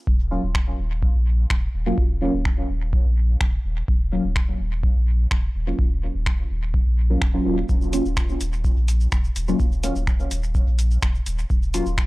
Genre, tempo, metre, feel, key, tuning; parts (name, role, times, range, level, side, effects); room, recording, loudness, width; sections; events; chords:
dub techno; 126 BPM; 4/4; straight; Eb minor; A4 = 439 Hz
pure sine sub bass; bass; 0.1-12.1 s; Eb1 to Bb1; -23 LUFS; equal; transformer saturation, sidechain pumping
electronic kick drum; drums; 0.1-12.1 s; -22 LUFS; equal; overdrive
deep mellow chord stab; stabs; 0.3-11.8 s; Gb3 to F4; -26 LUFS; equal; chorus, phaser, sidechain pumping, dub echo
booming analog drum machine; drums; 0.5-12.1 s; cabasa, finger snaps, hi-hat; -30 LUFS; equal; overdrive, dub echo
little or no reverb; dry, gritty hardware recording, cassette tape; -19 LUFS; side -20 dB against mid
0.1-12.1 A section
0.1 Ebm9